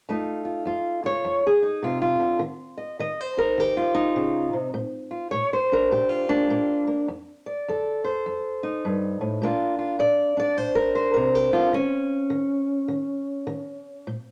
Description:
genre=acoustic country blues, solo or duo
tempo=103 BPM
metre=4/4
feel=swing 63% on 8ths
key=unclear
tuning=A4 = 438 Hz
part: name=fingerpicked old ladder-braced acoustic guitar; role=solo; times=0.1-14.3 s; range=F2 to Eb5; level=-25 LUFS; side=equal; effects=none
room=moderate studio reverb, RT60 0.8 s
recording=none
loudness=-24 LUFS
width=mono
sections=0.1-9.4 A section; 9.4-14.3 B section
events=none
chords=0.1 F7; 2.4 Eb7; 4.7 Bb; 7.1 F7; 9.4 Bb; 11.7 N.C.

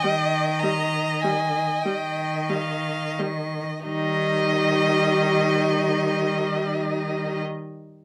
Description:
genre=classical, slow romantic movement for string quartet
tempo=28-34 BPM (dotted quarters)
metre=12/8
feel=rubato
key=Eb major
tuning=A4 = 440 Hz
part: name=rich violin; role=melody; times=0.0-7.4 s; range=Eb4 to Bb5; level=-32 LUFS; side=equal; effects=none
part: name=warm violin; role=second line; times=0.0-7.4 s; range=Eb5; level=-28 LUFS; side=equal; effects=none
part: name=warm viola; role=accompaniment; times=0.0-7.4 s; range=G3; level=-28 LUFS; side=equal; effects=none
part: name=rich cello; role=bass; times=0.0-7.4 s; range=Eb3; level=-30 LUFS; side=equal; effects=none
room=light reverb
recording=none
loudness=-24 LUFS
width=mono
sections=0.0-3.9 A section; 3.9-8.0 B section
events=slowing down 0.0-3.9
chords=0.0 Eb

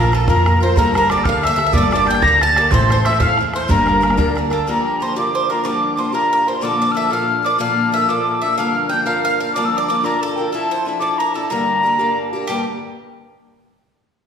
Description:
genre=celtic folk, Celtic jig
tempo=123 BPM (dotted quarters)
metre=6/8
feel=straight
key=G dorian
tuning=A4 = 440 Hz
part: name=mellow hollow wooden whistle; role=melody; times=0.0-12.7 s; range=G5 to Bb6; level=-18 LUFS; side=equal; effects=none
part: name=bowl-back mandolin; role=second line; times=0.0-12.6 s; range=G4 to Bb5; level=-25 LUFS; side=right 3 dB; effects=none
part: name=musette accordion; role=second line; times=0.0-4.3 s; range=A4 to Bb5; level=-25 LUFS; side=left 3 dB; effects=none
part: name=picked steel-string acoustic guitar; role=accompaniment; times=0.0-12.6 s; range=G2 to Bb4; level=-21 LUFS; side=left 2 dB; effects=none
part: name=upright bass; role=bass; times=0.0-4.6 s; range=G1 to F2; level=-19 LUFS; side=equal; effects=none
part: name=bodhran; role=percussion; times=0.1-4.6 s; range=none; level=-22 LUFS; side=right 2 dB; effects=none
room=wet scoring stage reverb, RT60 1.6 s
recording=recorded in a church or concert hall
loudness=-14 LUFS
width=side -7 dB against mid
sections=0.0-4.7 A section; 4.7-12.5 B section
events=none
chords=0.0 Bbsus2; 0.8 Gmadd9; 2.7 Am; 3.7 Gm; 4.7 Gm7; 6.6 Bbmaj7; 8.6 Gm7; 10.5 Dmadd9/F; 11.5 Gm

